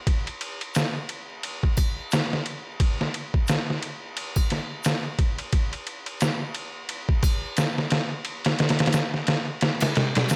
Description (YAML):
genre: trip hop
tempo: 88 BPM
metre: 4/4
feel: swing 58% on 16ths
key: none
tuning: none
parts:
  - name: trip hop sampler-style drum kit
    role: drums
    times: 0.1-10.4 s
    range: kick drum, ride cymbal, snare drum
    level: -26 LUFS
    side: equal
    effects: none
  - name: tube shaker and triangle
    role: percussion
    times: 0.7-10.4 s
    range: none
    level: -41 LUFS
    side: equal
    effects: none
room: little or no reverb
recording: vinyl crackle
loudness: -26 LUFS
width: mono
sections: 0.0-10.4 A section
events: none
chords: none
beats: | 0.07 0.75 1.43 2.11 | 2.79 3.48 4.16 4.84 | 5.52 6.20 6.89 7.57 | 8.25 8.93 9.61 10.29